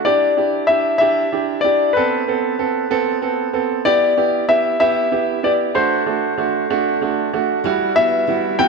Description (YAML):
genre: pop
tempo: 63 BPM (dotted quarters)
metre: 6/8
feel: straight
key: unclear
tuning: A4 = 442 Hz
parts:
  - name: clear concert grand piano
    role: melody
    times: 0.0-8.7 s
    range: B4 to G5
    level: -17 LUFS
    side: left 4 dB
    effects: none
  - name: clear upright piano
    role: accompaniment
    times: 0.0-8.7 s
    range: G3 to A4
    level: -19 LUFS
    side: right 8 dB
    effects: none
  - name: fingerpicked plugged-in steel-string acoustic guitar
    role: arpeggios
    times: 7.6-8.7 s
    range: G3 to E4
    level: -25 LUFS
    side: left 12 dB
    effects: none
room: wet echo chamber reverb, RT60 2.0 s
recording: 1960s-style stereo with parts hard left and right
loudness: -15 LUFS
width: side -4 dB against mid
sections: 0.1-8.7 A section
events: none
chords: 0.1 Em7; 2.0 Amadd9; 3.9 Em; 5.8 D; 7.6 Emadd9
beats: | 0.06 1.01 | 1.96 2.90 | 3.85 4.80 | 5.75 6.70 | 7.65 8.59